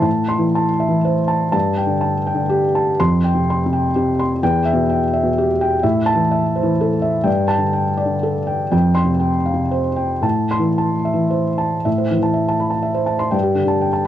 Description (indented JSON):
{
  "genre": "neoclassical minimalist piano",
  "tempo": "108-129 BPM",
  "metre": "3/4",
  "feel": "rubato",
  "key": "A minor",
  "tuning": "A4 = 440 Hz",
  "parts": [
    { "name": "felt-muted upright piano", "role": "solo", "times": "0.0-14.1 s", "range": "E2 to C6", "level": "-15 LUFS", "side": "equal", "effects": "none" }
  ],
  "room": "moderate small room reverb, RT60 0.5 s",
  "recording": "worn, warbling old tape, cassette tape, warbly pitch drift",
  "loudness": "-15 LUFS",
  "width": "side -11 dB against mid",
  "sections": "0.0-11.9 A section; 11.9-14.1 B section",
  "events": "none",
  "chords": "0.0 Am; 1.5 Gsus2; 3.0 Fsus2; 4.4 Em; 5.8 Am; 7.3 Gsus2; 8.7 Fsus2; 10.2 Am; 13.3 Gsus2"
}